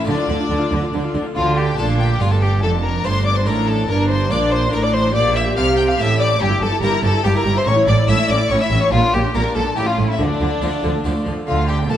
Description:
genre	classical, baroque-style concerto movement with solo episodes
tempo	142 BPM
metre	3/4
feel	straight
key	D minor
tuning	A4 = 440 Hz
part	rich chamber violin section	melody	0.0-12.0 s	D5 to G6	-26 LUFS	left 5 dB	none
part	warm violin	melody	0.0-12.0 s	D4 to G5	-22 LUFS	left 3 dB	none
part	harpsichord	accompaniment	0.0-12.0 s	F2 to Bb4	-27 LUFS	left 1 dB	none
part	rich chamber viola section	accompaniment	0.0-12.0 s	F3 to G4	-25 LUFS	equal	none
part	clear chamber violin section	second line	0.1-12.0 s	D4 to A5	-26 LUFS	left 2 dB	none
part	rich chamber double bass section	bass	0.1-12.0 s	F1 to D2	-22 LUFS	right 2 dB	none
part	warm chamber cello section	bass	0.1-12.0 s	F2 to D3	-21 LUFS	right 2 dB	none
room	moderate scoring stage reverb, RT60 1.7 s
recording	dark, warm production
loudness	-15 LUFS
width	side -11 dB against mid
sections	0.0-1.4 A section; 1.4-11.5 A section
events	none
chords	0.1 Dm; 2.6 Dm/F; 3.9 Gm; 5.1 Gm/Bb; 6.4 Edim/G; 7.7 A; 8.9 Gm/Bb; 9.8 A; 10.2 Dm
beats	| 0.07 0.50 0.93 | 1.36 1.78 2.20 | 2.62 3.04 3.46 | 3.88 4.30 4.72 | 5.14 5.56 5.98 | 6.40 6.82 7.24 | 7.66 8.08 8.50 | 8.92 9.34 9.77 | 10.19 10.62 11.05 | 11.47 11.89

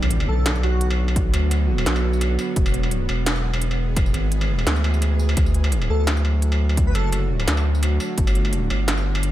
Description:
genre	half-time drum and bass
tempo	171 BPM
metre	4/4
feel	swing 55% on 16ths, half-time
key	B minor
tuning	A4 = 439 Hz
part	bowed-like drone	sustained chords	0.0-9.3 s	D3 to G#4	-28 LUFS	right 2 dB	built-in reverb, sidechain pumping
part	saturated sub bass	bass	0.0-9.3 s	E1 to D2	-20 LUFS	equal	none
part	industrial drum kit	drums	0.0-9.3 s	hi-hat, snare drum, struck metal, tambourine	-27 LUFS	equal	none
part	impact	sound effects	0.0-1.2 s	none	-31 LUFS	equal	none
part	airy dreamy lead	melody	0.3-0.9, 5.9-7.1 s	F#4 to B4	-31 LUFS	left 1 dB	chorus, diffuse ambient delay
part	electronic kick drum	drums	1.2-8.3 s	none	-21 LUFS	equal	none
room	light reverb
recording	none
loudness	-18 LUFS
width	side -14 dB against mid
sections	0.0-9.3 A section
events	impact 0.0-1.2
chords	0.0 Bm; 2.6 E; 5.4 D; 8.2 G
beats	0.11 0.46 0.81 | 1.16 1.51 1.86 2.21 | 2.56 2.92 3.27 3.62 | 3.97 4.32 4.67 5.02 | 5.37 5.72 6.07 6.42 | 6.77 7.12 7.48 7.83 | 8.18 8.53 8.88 9.23

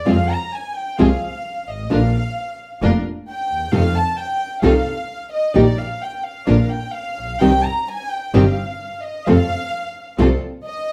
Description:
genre	tango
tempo	130 BPM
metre	4/4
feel	rubato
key	unclear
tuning	A4 = 439 Hz
part	warm chamber violin section	second line	0.0-10.9 s	D5 to Bb5	-26 LUFS	equal	none
part	rich double bass	bass	0.0-10.4 s	F1 to F2	-21 LUFS	equal	none
part	nylon-string guitar	accompaniment	0.1-10.3 s	C3 to G4	-20 LUFS	equal	none
part	warm studio string section	stabs	0.1-10.4 s	C4 to Bb4	-26 LUFS	equal	none
room	moderate club reverb, RT60 0.8 s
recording	none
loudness	-19 LUFS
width	mono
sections	0.0-10.9 A section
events	violin section solo 0.0-10.9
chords	0.1 Fm; 1.9 Bb; 3.7 F7; 5.6 Eb/Bb; 6.5 Bb; 7.4 Cm; 9.3 F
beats	| 0.06 0.53 0.99 1.45 | 1.91 2.37 2.82 3.27 | 3.73 4.18 4.63 5.09 | 5.55 6.01 6.47 6.94 | 7.41 7.88 8.34 8.81 | 9.27 9.73 10.19 10.64

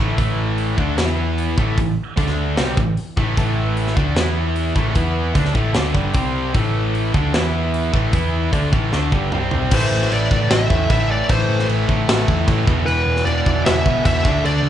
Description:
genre	hard rock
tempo	151 BPM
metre	4/4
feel	straight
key	A minor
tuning	A4 = 436 Hz
part	distorted electric guitar	riff	0.0-14.7 s	E2 to E4	-26 LUFS	left 6 dB	overdrive
part	high-gain distorted guitar	riff	0.0-14.7 s	E2 to E4	-26 LUFS	right 7 dB	distortion
part	overdriven electric guitar	riff	0.0-14.7 s	E2 to E4	-26 LUFS	equal	none
part	hollow-body short-scale picked electric bass	bass	0.0-14.7 s	E1 to E2	-21 LUFS	equal	none
part	tight metal drum kit	drums	0.2-14.5 s	crash cymbal, hi-hat, kick drum, snare drum, toms	-20 LUFS	equal	none
part	smooth overdriven lead guitar	melody	9.7-14.7 s	B4 to E5	-21 LUFS	equal	none
room	moderate large studio reverb, RT60 0.9 s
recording	band playing live in one room, nothing above 10.7 kHz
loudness	-16 LUFS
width	side -10 dB against mid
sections	0.0-9.7 A section; 9.7-14.7 B section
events	drum fill 8.9-9.7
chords	0.0 A5; 1.0 E5; 1.6 A5; 2.2 D5; 2.6 Am; 4.2 E5; 4.8 A5; 5.0 E5; 5.4 A5; 6.2 C5; 6.5 A5; 7.3 E5; 7.9 A5; 8.1 E5; 8.5 A5; 9.3 C5; 9.7 Am; 12.7 E5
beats	| 0.19 0.59 0.98 1.38 | 1.78 2.18 2.58 2.98 | 3.37 3.77 4.17 4.57 | 4.96 5.36 5.76 6.15 | 6.55 6.95 7.34 7.74 | 8.14 8.53 8.93 9.32 | 9.72 10.11 10.51 10.90 | 11.30 11.69 12.08 12.48 | 12.87 13.27 13.66 14.05 | 14.45

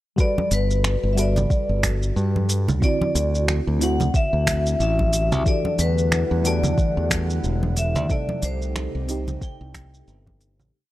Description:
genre	sunset chillout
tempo	91 BPM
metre	4/4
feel	swing 58% on 16ths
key	G major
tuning	A4 = 440 Hz
part	vibraphone with hard mallets	melody	0.2-10.4 s	B4 to G5	-26 LUFS	left 1 dB	tape echo
part	mellow FM electric piano	accompaniment	0.2-10.8 s	C3 to B4	-28 LUFS	moving between left 6 dB and right 4 dB	chorus, phaser, auto-pan, cassette tape, low-pass filter
part	electronic kick drum	drums	0.2-10.4 s	none	-22 LUFS	equal	overdrive
part	smooth R&B drum kit	drums	0.2-10.7 s	finger snaps, hi-hat, shaker	-27 LUFS	right 1 dB	overdrive
part	congas	percussion	0.4-10.7 s	none	-28 LUFS	right 1 dB	none
part	modern bright fingered electric bass	bass	0.5-10.7 s	E1 to G2	-22 LUFS	equal	none
part	airy breathy pad	sustained chords	5.5-10.7 s	C3 to F#5	-32 LUFS	equal	chorus
room	little or no reverb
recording	dry, gritty hardware recording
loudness	-19 LUFS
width	side -15 dB against mid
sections	0.2-10.7 groove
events	fade-out 7.2-10.7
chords	0.2 Gmaj9; 2.8 D9; 5.5 Em11; 8.1 Cm6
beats	| 0.18 0.84 1.50 2.16 | 2.82 3.48 4.14 4.80 | 5.46 6.12 6.78 7.44 | 8.10 8.76 9.42 10.07

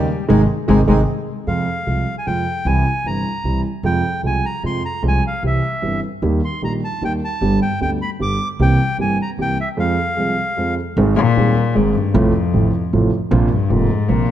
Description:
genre	tango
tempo	152 BPM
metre	3/4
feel	rubato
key	F harmonic minor, Ab major from 11.0 s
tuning	A4 = 440 Hz
part	warm cello	second line	0.0-1.0, 11.2-14.3 s	F2 to Ab3	-18 LUFS	left 5 dB	none
part	warm concert grand piano	accompaniment	0.0-14.3 s	Eb1 to Ab4	-19 LUFS	right 2 dB	none
part	bandoneon	stabs	0.0-1.0 s	C4 to Ab4	-28 LUFS	right 4 dB	none
part	upright bass	bass	0.0-14.2 s	F1 to F2	-21 LUFS	equal	none
part	bandoneon	melody	1.5-10.7 s	E5 to D6	-23 LUFS	equal	none
room	light reverb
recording	dark, warm production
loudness	-16 LUFS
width	side -11 dB against mid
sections	0.0-1.5 A section; 1.5-11.0 B section; 11.0-14.3 A section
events	cello solo 0.0-1.5, 11.0-14.3; band accent 0.3-1.5; break 9.8-11.0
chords	0.3 Ab; 1.1 N.C.; 1.5 Fm; 2.7 C; 3.8 Fm/C; 5.4 C; 6.2 Eb; 7.4 G; 8.6 C7; 9.8 Fm; 11.0 Ab; 12.1 F/A; 13.3 Bbsus2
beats	| 0.29 0.68 1.08 | 1.47 1.87 2.27 | 2.66 3.05 3.44 | 3.84 4.23 4.63 | 5.03 5.42 5.82 | 6.22 6.62 7.01 | 7.41 7.81 8.20 | 8.59 8.98 9.38 | 9.77 10.17 10.57 | 10.97 11.37 11.76 | 12.15 12.54 12.92 | 13.31 13.70 14.08

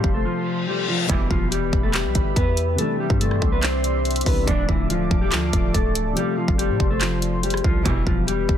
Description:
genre	hip hop, trap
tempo	142 BPM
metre	4/4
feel	half-time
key	E phrygian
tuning	A4 = 440 Hz
part	mellow electric guitar	melody	0.0-8.6 s	E3 to D5	-24 LUFS	left 2 dB	tape echo
part	dark grand piano	accompaniment	0.0-8.6 s	B2 to E5	-29 LUFS	left 2 dB	none
part	dark analog pad	sustained chords	0.0-8.6 s	F4 to D6	-32 LUFS	right 4 dB	chorus
part	hard-hitting 808-style bass	bass	0.0-8.6 s	D1 to A2	-25 LUFS	equal	none
part	dubstep drum kit	drums	0.0-8.6 s	handclaps, hi-hat, kick drum, rim click	-22 LUFS	equal	none
part	reverse cymbal and impact	sound effects	0.4-2.8 s	none	-29 LUFS	left 4 dB	none
part	muted studio string section	stabs	1.1-1.5, 4.5-4.9, 7.9-8.3 s	A1 to G3	-33 LUFS	right 7 dB	tape echo
room	digital ambience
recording	dense, heavily limited modern master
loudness	-19 LUFS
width	side -10 dB against mid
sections	0.0-1.1 A section; 1.1-8.6 B section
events	break 0.2-1.1; reverse cymbal 0.4-1.1; impact 1.1-2.8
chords	0.0 F; 1.1 Em; 2.8 Cadd9; 4.5 Dmadd9; 6.2 F; 7.9 Em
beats	0.25 0.67 | 1.09 1.52 1.94 2.36 | 2.79 3.21 3.63 4.05 | 4.47 4.90 5.32 5.74 | 6.17 6.59 7.01 7.43 | 7.86 8.28

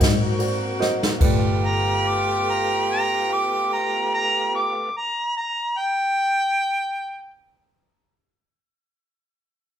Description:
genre	slow blues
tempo	48 BPM (dotted quarters)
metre	12/8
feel	straight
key	G mixolydian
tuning	A4 = 442 Hz
part	warm upright piano	accompaniment	0.0-4.9 s	A3 to Eb5	-26 LUFS	right 3 dB	none
part	tonewheel organ	sustained chords	0.0-4.9 s	A3 to Gb4	-32 LUFS	right 1 dB	fast rotary speaker
part	warm horn section	sustained chords	0.0-4.9 s	A3 to Gb4	-33 LUFS	left 2 dB	none
part	vintage muted fingered electric bass	bass	0.0-4.9 s	G1 to Ab2	-26 LUFS	left 1 dB	none
part	jazz brush drum kit	drums	0.0-1.4 s	crash cymbal, kick drum, ride cymbal, snare drum	-21 LUFS	left 1 dB	none
part	clear harmonica	second line	1.2-4.9 s	G4	-24 LUFS	right 2 dB	overdrive
part	mellow harmonica	melody	1.7-7.3 s	G5 to D6	-22 LUFS	equal	none
room	moderate large studio reverb, RT60 1.0 s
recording	band playing live in one room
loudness	-20 LUFS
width	side -9 dB against mid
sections	0.0-1.2 A section; 1.2-6.2 B section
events	slowing down 0.0-1.2; drum fill 0.8-1.2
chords	0.0 Ab9; 1.2 G9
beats	0.00 | 1.20 2.44 3.68 4.92

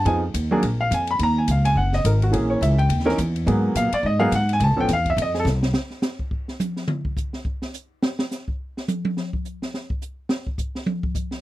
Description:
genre	jazz piano trio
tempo	211 BPM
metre	4/4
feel	swing 59% on 8ths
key	unclear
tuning	A4 = 440 Hz
part	warm upright piano	melody	0.0-5.4 s	E3 to B5	-21 LUFS	equal	none
part	upright bass	bass	0.0-5.7 s	F#1 to A#2	-21 LUFS	equal	none
part	open jazz drum kit	drums	0.1-11.4 s	hi-hat, kick drum, ride cymbal, snare drum, toms	-27 LUFS	equal	none
room	little or no reverb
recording	dry, close 1970s-style studio recording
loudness	-20 LUFS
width	side -16 dB against mid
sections	0.0-5.7 A section; 5.7-11.4 A section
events	upright piano solo 0.0-5.7; drum fill 5.5; drum solo 5.7-11.4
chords	0.1 Fm7b5; 0.6 A#5; 1.2 D#m7; 2.3 A#m7b5; 2.9 D#(b9); 3.5 G#m9; 4.6 C#7alt; 5.2 F5; 5.7 N.C.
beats	| 0.06 0.35 0.63 0.91 | 1.20 1.48 1.77 2.05 | 2.33 2.62 2.90 3.19 | 3.47 3.75 4.04 4.32 | 4.61 4.89 5.17 5.46 | 5.74 6.03 6.31 6.60 | 6.88 7.17 7.45 7.74 | 8.02 8.30 8.59 8.87 | 9.16 9.44 9.73 10.01 | 10.30 10.58 10.87 11.15

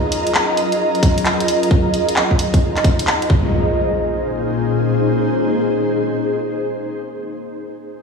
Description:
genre	UK garage, two-step garage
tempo	132 BPM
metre	4/4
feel	swing 65% on 16ths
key	Bb minor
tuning	A4 = 440 Hz
part	ethereal airy pad	sustained chords	0.0-7.0 s	Bb2 to C5	-22 LUFS	left 3 dB	ensemble chorus, built-in reverb, phaser, sidechain pumping
part	ethereal airy pad	texture	0.0-7.4 s	Gb3 to Bb5	-20 LUFS	right 1 dB	ensemble chorus, built-in reverb, tremolo, sidechain pumping
part	garage drum kit	drums	0.1-3.3 s	handclaps, hi-hat	-21 LUFS	equal	none
part	electronic kick drum	drums	1.0-3.4 s	none	-15 LUFS	equal	none
part	impact	sound effects	3.3-7.0 s	none	-22 LUFS	equal	none
room	wet lush hall reverb, RT60 1.7 s, digital ambience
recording	played on a big sound system in a bare room, large studio reverb, studio ambience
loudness	-15 LUFS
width	side -5 dB against mid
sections	0.0-3.5 A section; 3.5-7.2 B section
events	none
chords	0.0 Gbmaj9; 1.7 Fm7; 3.3 Bbm7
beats	0.34 0.80 1.25 | 1.71 2.16 2.62 3.07 | 3.53 3.98 4.44 4.89 | 5.34 5.80 6.25 6.71

